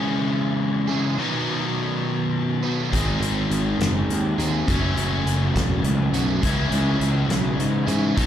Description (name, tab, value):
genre	indie rock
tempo	69 BPM (dotted quarters)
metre	6/8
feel	straight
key	unclear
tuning	A4 = 438 Hz
part	cranked stack guitar	riff	0.0-8.3 s	F#2 to D#4	-25 LUFS	left 8 dB	overdrive, slapback echo
part	crunchy overdriven guitar	riff	0.0-8.3 s	F#2 to B4	-25 LUFS	right 5 dB	analog chorus
part	fuzz picked electric bass	bass	2.9-8.3 s	E1 to G#2	-23 LUFS	equal	overdrive
part	loose indie drum kit	drums	2.9-8.3 s	hi-hat, kick drum, snare drum	-27 LUFS	equal	none
room	light reverb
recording	live gig heard through the venue's PA, club reverb, lossy compression artefacts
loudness	-20 LUFS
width	side -10 dB against mid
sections	0.0-8.3 A section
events	none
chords	0.0 C#m; 1.2 B; 2.9 G#; 4.7 F#m; 6.4 C#m7